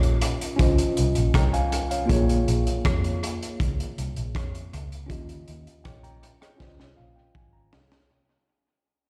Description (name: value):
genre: lovers rock reggae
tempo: 80 BPM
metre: 4/4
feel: straight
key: unclear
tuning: A4 = 441 Hz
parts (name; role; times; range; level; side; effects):
- mellow tine electric piano; accompaniment; 0.0-8.1 s; Bb3 to Bb5; -30 LUFS; equal; tape echo, slapback echo
- vintage muted fingered electric bass; bass; 0.0-8.1 s; Ab1 to F2; -27 LUFS; equal; none
- crunchy breakbeat drum kit; drums; 0.0-8.1 s; hi-hat, kick drum, rim click, snare drum; -29 LUFS; equal; tape echo
room: small room reverb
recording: live gig heard through the venue's PA, recital hall reverb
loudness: -24 LUFS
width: mono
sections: 0.0-8.1 A section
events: fade-out 0.0-8.1; drum fill 6.6-8.1; tine electric piano fill 6.6-8.1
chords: 0.0 Eb9; 0.6 Dbmaj9; 2.1 Bbm7; 5.1 Eb9; 6.6 Dbmaj9